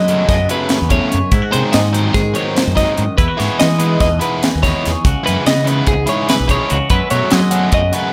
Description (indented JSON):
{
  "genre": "math rock and midwest emo",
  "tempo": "290 BPM (eighths)",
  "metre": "9/8",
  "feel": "straight",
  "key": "unclear",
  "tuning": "A4 = 440 Hz",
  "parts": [
    { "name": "twangy electric guitar", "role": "accompaniment", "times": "0.0-8.1 s", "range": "E2 to G#4", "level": "-24 LUFS", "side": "equal", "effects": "phaser, plate reverb" },
    { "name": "twelve-string electric guitar", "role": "arpeggios", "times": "0.0-8.1 s", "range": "G#4 to D#5", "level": "-21 LUFS", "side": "equal", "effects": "plate reverb" },
    { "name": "growling fingered electric bass", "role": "bass", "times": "0.0-7.9 s", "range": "B1 to F#3", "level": "-20 LUFS", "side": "equal", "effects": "overdrive" },
    { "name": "biting overdriven guitar", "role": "riff", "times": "0.1-8.1 s", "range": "C#3 to F#4", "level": "-23 LUFS", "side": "equal", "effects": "none" },
    { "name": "crisp fusion drum kit", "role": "drums", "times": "0.1-8.0 s", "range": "hi-hat, kick drum, snare drum", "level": "-19 LUFS", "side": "equal", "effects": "none" }
  ],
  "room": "light reverb",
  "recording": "none",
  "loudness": "-15 LUFS",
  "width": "mono",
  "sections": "0.0-8.1 A section",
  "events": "none",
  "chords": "0.0 F#m11; 1.3 G#7; 3.2 Emaj9; 5.0 C#m11; 6.9 F#m11"
}